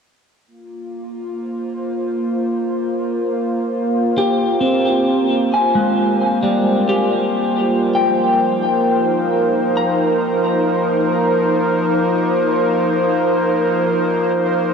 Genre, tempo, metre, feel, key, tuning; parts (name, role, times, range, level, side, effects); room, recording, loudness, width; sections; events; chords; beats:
ambient; free time; A4 = 441 Hz
airy breathy pad; sustained chords; 0.5-14.7 s; F3 to C5; -19 LUFS; equal; chorus
overtone-sweeping drone; drone; 0.7-14.7 s; Bb3 to F4; -21 LUFS; right 1 dB; chorus, built-in reverb
electric guitar at the edge of break-up; arpeggios; 4.2-12.0 s; G3 to Bb5; -18 LUFS; left 1 dB; diffuse ambient delay
wet huge ambient reverb, RT60 7.2 s; worn, warbling old tape, cassette tape, warbly pitch drift; -15 LUFS; side -6 dB against mid
0.5-14.7 A section
fade-in on analog synth pad 0.5-14.7
0.5 Bb5; 7.8 F9sus4
free time